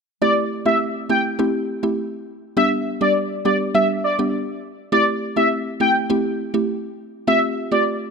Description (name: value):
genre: dancehall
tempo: 102 BPM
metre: 4/4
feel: straight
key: A minor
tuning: A4 = 440 Hz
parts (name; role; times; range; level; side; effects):
- warm velvety synth lead; melody; 0.2-7.8 s; D5 to G5; -20 LUFS; left 1 dB; chorus
- mallet-like synth pluck; accompaniment; 0.2-8.1 s; G3 to G4; -21 LUFS; right 1 dB; chorus
room: moderate lush hall reverb, RT60 2.4 s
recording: none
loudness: -18 LUFS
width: side -5 dB against mid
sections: 0.2-8.1 A section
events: none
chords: 0.2 Am7; 2.6 G; 4.9 Am7; 7.3 Fadd9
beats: | 0.22 0.81 1.40 1.98 | 2.57 3.16 3.75 4.34 | 4.92 5.51 6.10 6.69 | 7.28 7.87